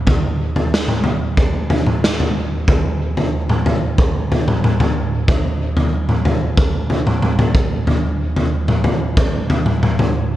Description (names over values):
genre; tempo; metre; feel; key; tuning
rock; 92 BPM; 4/4; straight; none; none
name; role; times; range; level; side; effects
raw garage drum kit; drums; 0.1-10.1 s; kick drum, snare drum, toms; -15 LUFS; equal; none
room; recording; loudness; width
little or no reverb; echo-heavy mix; -15 LUFS; side -14 dB against mid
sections
0.0-10.4 A section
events
none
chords
none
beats
| 0.07 0.73 1.38 2.03 | 2.68 3.33 3.98 4.63 | 5.28 5.93 6.58 7.23 | 7.88 8.52 9.17 9.82